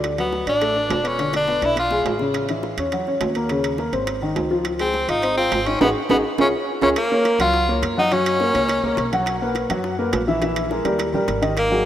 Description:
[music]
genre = Afro-Cuban jazz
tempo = 208 BPM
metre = 4/4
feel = straight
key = F# major from 7.0 s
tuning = A4 = 439 Hz
[part]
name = warm baby grand piano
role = accompaniment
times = 0.0-11.9 s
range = Db3 to F#5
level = -21 LUFS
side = left 1 dB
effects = none
[part]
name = upright bass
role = bass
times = 0.0-11.9 s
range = E1 to F#2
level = -30 LUFS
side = equal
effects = none
[part]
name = bongos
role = percussion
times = 0.0-11.7 s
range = none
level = -35 LUFS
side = left 5 dB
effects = none
[part]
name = timbales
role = percussion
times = 0.0-11.7 s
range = none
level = -28 LUFS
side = right 5 dB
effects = none
[part]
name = edgy tenor saxophone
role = melody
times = 0.2-2.0, 4.8-9.1, 11.6-11.9 s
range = A#3 to F4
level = -21 LUFS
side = equal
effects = none
[sound]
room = wet lush hall reverb, RT60 2.9 s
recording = rough home demo mix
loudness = -18 LUFS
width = side -11 dB against mid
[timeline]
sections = 0.0-7.0 A section; 7.0-11.9 B section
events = drum fill 1.2-2.3, 5.8-7.0; band accent 5.8-7.0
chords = 0.0 Dadd9; 1.2 E7b9; 2.3 A6; 3.5 Eb5; 4.1 Ab6; 5.8 Ab7(no3); 6.4 Db; 7.0 F#maj7; 8.1 F#; 9.3 B5; 10.4 Emaj7#11/A#; 11.0 D#

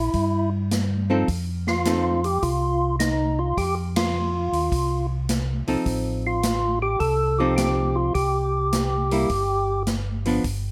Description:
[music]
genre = soul jazz organ trio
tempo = 105 BPM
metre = 4/4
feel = swing 68% on 8ths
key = unclear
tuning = A4 = 440 Hz
[part]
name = percussive tonewheel organ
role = melody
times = 0.0-9.8 s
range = Eb4 to A4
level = -26 LUFS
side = equal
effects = slow rotary speaker, overdrive, plate reverb
[part]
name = mellow tonewheel organ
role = bass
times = 0.0-10.7 s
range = G1 to G2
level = -28 LUFS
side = equal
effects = slow rotary speaker
[part]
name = swinging big-band drum kit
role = drums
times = 0.1-10.6 s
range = hi-hat, kick drum, ride cymbal, snare drum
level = -31 LUFS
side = equal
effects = none
[part]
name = archtop guitar, miked and amplified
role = accompaniment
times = 1.1-2.2, 5.7-10.4 s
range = F3 to A4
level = -26 LUFS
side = equal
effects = none
[sound]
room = light reverb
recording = none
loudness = -23 LUFS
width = mono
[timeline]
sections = 0.0-10.7 A section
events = band accent 3.9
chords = 0.0 C7; 1.3 F7; 8.2 C5

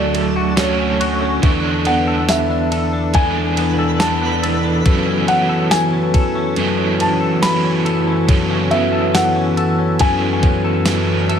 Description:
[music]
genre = dream pop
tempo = 70 BPM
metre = 4/4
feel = straight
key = unclear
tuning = A4 = 440 Hz
[part]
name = felt-muted upright piano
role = melody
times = 0.0-10.8 s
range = C#5 to B5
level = -21 LUFS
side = left 1 dB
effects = tape echo
[part]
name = overdriven semi-hollow guitar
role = accompaniment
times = 0.0-11.4 s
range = F#2 to A4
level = -20 LUFS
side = right 4 dB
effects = tremolo, wide subtle chorus
[part]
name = mellow tonewheel organ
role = sustained chords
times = 0.0-11.4 s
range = D2 to B4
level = -21 LUFS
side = left 2 dB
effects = slow rotary speaker
[part]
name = clean electric guitar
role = arpeggios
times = 0.0-11.4 s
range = F#2 to A4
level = -21 LUFS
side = left 3 dB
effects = analog chorus, tape echo
[part]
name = twinkling granular texture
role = texture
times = 0.0-5.2, 11.1-11.4 s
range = A4 to E5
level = -30 LUFS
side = right 1 dB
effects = built-in reverb, tape echo
[part]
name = crisp 8-bit digital drum machine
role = drums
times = 0.1-11.4 s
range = kick drum, ride cymbal, snare drum, tambourine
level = -20 LUFS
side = equal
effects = none
[sound]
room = moderate concert hall reverb, RT60 2.3 s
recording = none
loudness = -14 LUFS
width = side -8 dB against mid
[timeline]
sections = 0.0-11.4 A section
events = none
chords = 0.0 Dmaj7; 1.4 E7sus4; 4.9 F#m11

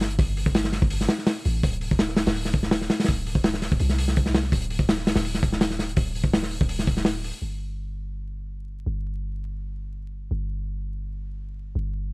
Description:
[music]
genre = drum and bass, jungle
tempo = 166 BPM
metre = 4/4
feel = straight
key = unclear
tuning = A4 = 439 Hz
[part]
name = warm 808-style bass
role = bass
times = 0.0-12.1 s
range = D1 to C2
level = -28 LUFS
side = equal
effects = none
[part]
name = crunchy breakbeat drum kit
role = drums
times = 0.0-7.3 s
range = hi-hat, kick drum, snare drum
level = -22 LUFS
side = equal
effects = none
[sound]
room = little or no reverb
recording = vinyl crackle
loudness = -22 LUFS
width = side -28 dB against mid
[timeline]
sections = 0.0-7.4 A section; 7.4-12.1 B section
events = drop 0.0-7.4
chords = none

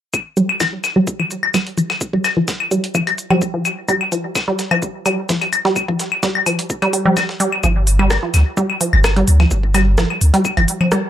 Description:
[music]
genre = minimal techno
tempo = 128 BPM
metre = 4/4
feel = straight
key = unclear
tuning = A4 = 439 Hz
[part]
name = dusty soul sampler-style drum kit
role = drums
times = 0.1-11.0 s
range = hi-hat, shaker, snare drum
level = -26 LUFS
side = right 1 dB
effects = sidechain pumping on perc, high-pass filter on perc, high-pass filter on snare, sidechain pumping on hats, high-pass filter on hats
[part]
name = electronic kick drum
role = drums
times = 0.1-11.0 s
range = none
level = -26 LUFS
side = equal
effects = high-pass filter on kick
[part]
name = claves, woodblock and congas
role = percussion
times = 0.1-10.9 s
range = none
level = -19 LUFS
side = left 3 dB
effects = overdrive, dub echo
[part]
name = resonant blip pluck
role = riff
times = 0.4-11.0 s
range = F3 to G3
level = -18 LUFS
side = right 1 dB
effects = chorus, sidechain pumping, dub echo
[part]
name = techno drum kit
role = drums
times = 0.4-11.0 s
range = hi-hat, rim click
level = -22 LUFS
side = equal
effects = low-pass filter on hats, low-pass filter on snare
[part]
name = punchy sub bass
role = bass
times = 7.6-10.7 s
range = G1 to D2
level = -14 LUFS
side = equal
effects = tube saturation, sidechain pumping
[sound]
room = light reverb, digital ambience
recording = none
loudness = -14 LUFS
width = side -11 dB against mid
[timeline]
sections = 0.1-11.1 A section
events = filter sweep on synth pluck 0.1-11.1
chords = 0.1 G5

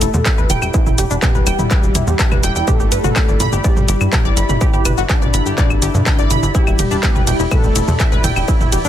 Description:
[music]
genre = melodic techno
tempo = 124 BPM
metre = 4/4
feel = straight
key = E minor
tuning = A4 = 437 Hz
[part]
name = mellow synth brass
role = melody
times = 0.0-8.1 s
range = D4 to A4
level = -26 LUFS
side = left 2 dB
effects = chorus, sidechain pumping, tape echo
[part]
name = soft supersaw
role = second line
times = 0.0-8.1 s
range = D3 to A3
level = -27 LUFS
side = equal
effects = sidechain pumping, tape echo
[part]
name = dark analog pad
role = sustained chords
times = 0.0-8.9 s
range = G4 to B5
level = -31 LUFS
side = left 5 dB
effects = chorus, sidechain pumping
[part]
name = tight sequenced synth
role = arpeggios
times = 0.0-8.9 s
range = B3 to B5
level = -22 LUFS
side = right 1 dB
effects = chorus, sidechain pumping, tape echo
[part]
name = plucky analog bass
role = bass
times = 0.0-8.9 s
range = E1 to G2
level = -19 LUFS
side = equal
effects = sidechain pumping
[part]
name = techno drum kit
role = drums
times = 0.0-8.9 s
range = claves, handclaps, hi-hat, ride cymbal, shaker, toms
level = -20 LUFS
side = equal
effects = none
[part]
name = granular cloud pad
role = texture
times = 0.5-8.9 s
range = E4 to B5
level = -27 LUFS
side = right 1 dB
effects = built-in reverb, sidechain pumping
[part]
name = electronic kick drum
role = drums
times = 0.3-8.6 s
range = none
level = -15 LUFS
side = equal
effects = distortion
[sound]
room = digital ambience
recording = dense, heavily limited modern master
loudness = -12 LUFS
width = side -11 dB against mid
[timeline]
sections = 0.0-8.9 A section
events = none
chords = 0.0 Em; 2.7 G; 6.5 Em

